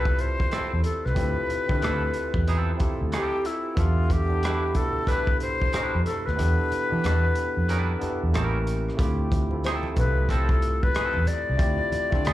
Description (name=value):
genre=R&B, neo-soul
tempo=92 BPM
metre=4/4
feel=swing 62% on 16ths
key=D dorian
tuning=A4 = 440 Hz
part: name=breathy silver concert flute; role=melody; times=0.0-12.3 s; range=E4 to D5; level=-28 LUFS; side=left 3 dB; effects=plate reverb, slapback echo, tape echo
part: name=twangy electric guitar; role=second line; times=0.0-12.3 s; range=F3 to B4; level=-34 LUFS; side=right 4 dB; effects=spring reverb, plate reverb, slapback echo
part: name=barky tine electric piano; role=accompaniment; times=0.0-12.3 s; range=B2 to E5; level=-31 LUFS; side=right 2 dB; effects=overdrive, analog chorus, plate reverb, slapback echo
part: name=vintage muted fingered electric bass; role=bass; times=0.0-12.3 s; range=A1 to E3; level=-25 LUFS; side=equal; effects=none
part: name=crunchy breakbeat drum kit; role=drums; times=0.1-12.3 s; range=hi-hat, kick drum, rim click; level=-27 LUFS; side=equal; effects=none
part: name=congas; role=percussion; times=9.3-12.3 s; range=none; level=-37 LUFS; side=left 1 dB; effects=none
room=little or no reverb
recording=live gig heard through the venue's PA, club reverb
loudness=-22 LUFS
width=side -14 dB against mid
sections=0.0-12.3 A section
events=kick muted 6.4-9.0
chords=0.0 Dm9; 3.8 Em7; 8.3 A7b9; 9.0 Dm9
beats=0.51 | 1.16 1.81 2.46 3.11 | 3.77 4.42 5.07 5.72 | 6.38 7.03 7.68 8.33 | 8.98 9.64 10.29 10.94 | 11.59 12.24